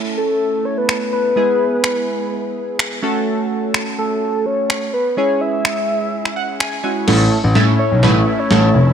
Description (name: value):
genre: dance-pop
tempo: 126 BPM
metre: 4/4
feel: straight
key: unclear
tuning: A4 = 440 Hz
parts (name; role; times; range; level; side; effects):
- chorused retro synth keys; accompaniment; 0.0-8.8 s; G#3 to G#5; -20 LUFS; right 2 dB; none
- soft octave-layered synth lead; melody; 0.2-8.9 s; A4 to E5; -19 LUFS; left 1 dB; chorus, digital delay
- gated 80s digital drum machine; drums; 0.9-8.6 s; crash cymbal, finger snaps, snare drum; -21 LUFS; right 1 dB; gated reverb, gated reverb snare
- supersaw pad; sustained chords; 7.1-8.9 s; A3 to E4; -23 LUFS; right 1 dB; none
- dark baby grand piano; bass; 7.1-8.9 s; E#1 to A2; -14 LUFS; left 1 dB; none
room: light reverb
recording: none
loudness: -15 LUFS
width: side -8 dB against mid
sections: 0.0-7.1 A section; 7.1-8.9 B section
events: synth keys fill 6.1-7.1; build-up 7.1-8.9; drum fill 7.1-8.9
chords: 0.0 A; 1.4 E; 3.0 F#m; 5.2 C#m; 7.1 A